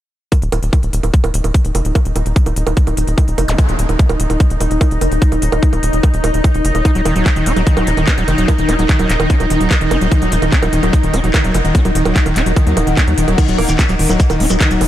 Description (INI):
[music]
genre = psychedelic trance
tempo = 147 BPM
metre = 4/4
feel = straight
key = Eb minor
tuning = A4 = 440 Hz
[part]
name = swarming drone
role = sustained chords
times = 0.9-14.9 s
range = Eb4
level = -21 LUFS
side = equal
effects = built-in reverb, sidechain pumping
[part]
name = drum and bass drum kit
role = drums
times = 0.3-14.9 s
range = bongos, crash cymbal, handclaps, hi-hat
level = -21 LUFS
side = right 3 dB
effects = none
[part]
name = electronic kick drum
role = drums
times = 0.3-14.7 s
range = none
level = -12 LUFS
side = equal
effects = none
[part]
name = granular cloud pad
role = texture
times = 2.3-14.9 s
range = Eb4 to Bb5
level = -28 LUFS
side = left 2 dB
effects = built-in reverb, wide subtle chorus, sidechain pumping
[part]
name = tight sequencer bass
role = bass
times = 0.4-14.9 s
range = Eb1 to Eb2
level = -17 LUFS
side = equal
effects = none
[part]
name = zap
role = sound effects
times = 3.5-3.6 s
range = none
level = -27 LUFS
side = left 1 dB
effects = none
[part]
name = screaming distorted acid line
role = riff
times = 6.8-14.8 s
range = Eb3 to Eb4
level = -19 LUFS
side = equal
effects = distortion, chorus, auto-pan, sidechain pumping, diffuse ambient delay
[part]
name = shekere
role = percussion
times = 13.4-14.8 s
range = none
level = -28 LUFS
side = left 2 dB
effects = none
[part]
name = metallic wobble bass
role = second line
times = 13.6-13.7 s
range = Bb3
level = -29 LUFS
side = right 2 dB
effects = none
[sound]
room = light reverb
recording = none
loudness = -12 LUFS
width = side -12 dB against mid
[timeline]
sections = 0.3-14.9 A section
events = fade-in on ambient pad 0.3-14.9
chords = 0.3 Eb5